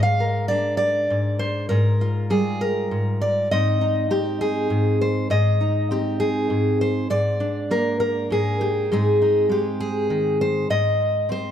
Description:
folk, solo fingerstyle acoustic guitar; 67 BPM (dotted quarters); 6/8; straight; Ab lydian; A4 = 441 Hz
fingerpicked steel-string acoustic guitar; solo; 0.0-11.5 s; Ab2 to F5; -19 LUFS; equal
light reverb; close, detailed microphones; -19 LUFS; side -9 dB against mid
0.0-10.7 A section
0.0 Bb/Ab; 1.7 Bb7/Ab; 3.5 Ab; 7.1 Bb/Ab; 8.9 Ab
0.80 | 1.70 2.60 | 3.50 4.40 | 5.30 6.20 | 7.09 7.99 | 8.89 9.79 | 10.69

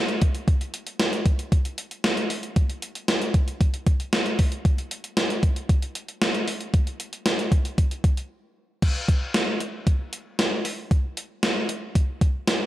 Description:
pop; 115 BPM; 4/4; straight
gated 80s digital drum machine; drums; 0.1-12.6 s; crash cymbal, hi-hat, kick drum, snare drum; -21 LUFS; equal; gated reverb, gated reverb snare, overdrive
light reverb; dry, gritty hardware recording; -22 LUFS; side -15 dB against mid
0.0-8.8 A section; 8.8-12.7 B section
break 8.3-8.8
| 0.48 1.00 1.52 2.04 | 2.56 3.08 3.61 4.13 | 4.65 5.17 5.69 6.21 | 6.74 7.26 7.78 8.30 | 8.82 9.35 9.87 10.39 | 10.91 11.43 11.95 12.48

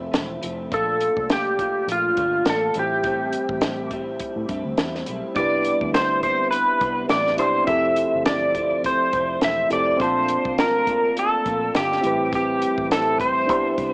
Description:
indie pop, bedroom pop; 103 BPM; 4/4; swing 55% on 16ths; A4 = 440 Hz
electric guitar through a small old amp; accompaniment; 0.0-13.9 s; A2 to F4; -29 LUFS; equal; analog chorus, warbly pitch drift, cassette tape
vintage muted fingered electric bass; bass; 0.0-13.9 s; E1 to A2; -34 LUFS; equal
compact cocktail drum kit; drums; 0.1-13.9 s; hi-hat, kick drum, snare drum; -25 LUFS; equal; cassette tape
clean lap steel guitar; melody; 0.7-13.9 s; F4 to E5; -20 LUFS; equal; analog chorus, cassette tape
barky reed electric piano; accompaniment; 5.3-13.9 s; C4 to A5; -26 LUFS; equal; cassette tape
light reverb; home recording on cassette, small speaker sound; -19 LUFS; side -27 dB against mid
0.0-13.9 A section
reed electric piano fill 13.8
0.0 Fmaj7; 0.7 Bbmaj7; 2.7 Am7; 7.7 Fmaj7; 10.0 Bbmaj7; 12.0 Am7
0.14 | 0.72 1.30 1.88 2.46 | 3.04 3.62 4.20 4.78 | 5.36 5.94 6.52 7.10 | 7.68 8.26 8.84 9.42 | 10.00 10.58 11.16 11.74 | 12.32 12.90 13.48

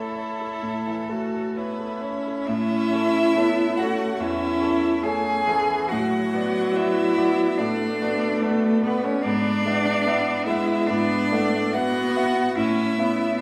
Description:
classical, slow romantic movement for piano quartet; 72 BPM; 4/4; rubato; A major; A4 = 445 Hz
clear violin; melody; 0.0-13.4 s; A4 to G#5; -32 LUFS; equal
rich cello; second line; 0.0-13.4 s; A3 to A4; -27 LUFS; equal
bright concert grand piano; accompaniment; 0.0-13.4 s; E2 to E5; -29 LUFS; equal
rich viola; accompaniment; 0.0-13.4 s; E3 to F#4; -29 LUFS; equal
wet recital hall reverb, RT60 1.6 s; heard from further back in the room; -23 LUFS; mono
0.0-2.5 A section; 2.5-13.4 A section
0.0 A; 5.9 Bm7/A; 9.2 E7/G#; 12.6 A
0.64 1.57 | 2.49 3.36 4.21 5.06 | 5.91 6.76 7.59 8.42 | 9.24 10.06 10.89 11.73 | 12.57 13.41

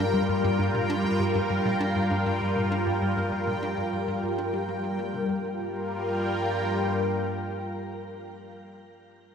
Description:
ambient, sequencer-driven space music; 99 BPM; 4/4; straight; G minor; A4 = 440 Hz
lush unison pad; sustained chords; 0.0-8.5 s; G3 to G5; -27 LUFS; left 1 dB; chorus, phaser, shimmer reverb
warbly dusty pluck; arpeggios; 0.0-5.6 s; G2 to G4; -35 LUFS; equal
tight sequencer bass; riff; 0.0-5.6 s; G2 to D4; -33 LUFS; equal; tape echo
analog drone; bass; 0.0-7.1 s; G2; -33 LUFS; equal; chorus
bubbling stepped-filter texture; texture; 0.0-5.3 s; G5; -39 LUFS; right 1 dB; chorus, built-in reverb, shimmer reverb
wet echo chamber reverb, RT60 2.7 s; echo-heavy mix; -25 LUFS; side -7 dB against mid
0.0-5.3 A section; 5.3-7.7 B section
fade-out on analog synth bass 0.0-5.3
0.0 Gm7
| 0.44 1.05 1.65 2.26 | 2.86 3.47 4.08 4.68 | 5.29 5.89 6.50 7.11

